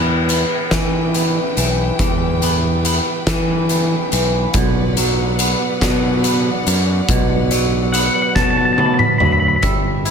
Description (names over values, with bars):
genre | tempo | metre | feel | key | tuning
post-rock | 47 BPM (dotted quarters) | 6/8 | straight | unclear | A4 = 440 Hz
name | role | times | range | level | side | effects
rich studio string section | sustained chords | 0.0-9.6 s | E3 to G5 | -26 LUFS | equal | none
twangy electric guitar | arpeggios | 0.0-10.1 s | B2 to E4 | -21 LUFS | right 1 dB | tape echo
growling fingered electric bass | bass | 0.0-10.1 s | G1 to E3 | -19 LUFS | equal | overdrive
oversized low-tuned drum kit | drums | 0.3-10.1 s | hi-hat, kick drum, snare drum, toms | -19 LUFS | equal | none
twangy electric guitar | melody | 7.9-10.1 s | E5 to B5 | -17 LUFS | left 1 dB | tape echo
room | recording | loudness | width
light reverb, small room ambience | none | -14 LUFS | side -6 dB against mid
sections
0.0-9.6 A section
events
drum fill 8.4-9.6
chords
0.0 Em; 4.5 Bm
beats
0.71 | 1.99 3.27 | 4.54 5.82 | 7.09 8.36 | 9.63